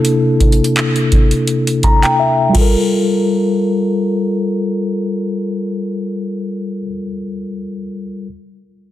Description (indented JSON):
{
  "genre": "contemporary R&B",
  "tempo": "84 BPM",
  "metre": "4/4",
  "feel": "swing 54% on 16ths",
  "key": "G minor",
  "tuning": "A4 = 440 Hz",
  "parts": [
    { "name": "mellow tine electric piano", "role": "accompaniment", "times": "0.0-8.3 s", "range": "C3 to Bb5", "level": "-15 LUFS", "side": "left 1 dB", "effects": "medium stereo tremolo" },
    { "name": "booming analog drum machine", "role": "drums", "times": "0.0-2.8 s", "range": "crash cymbal, handclaps, hi-hat, kick drum", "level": "-15 LUFS", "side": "equal", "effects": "none" }
  ],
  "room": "light reverb",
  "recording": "dense, heavily limited modern master",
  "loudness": "-13 LUFS",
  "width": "side -13 dB against mid",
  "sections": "0.0-2.9 A section; 2.9-5.8 B section",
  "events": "tine electric piano fill 1.5-2.9; drums muted 2.2-2.9",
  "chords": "0.0 C13; 2.5 Gm9"
}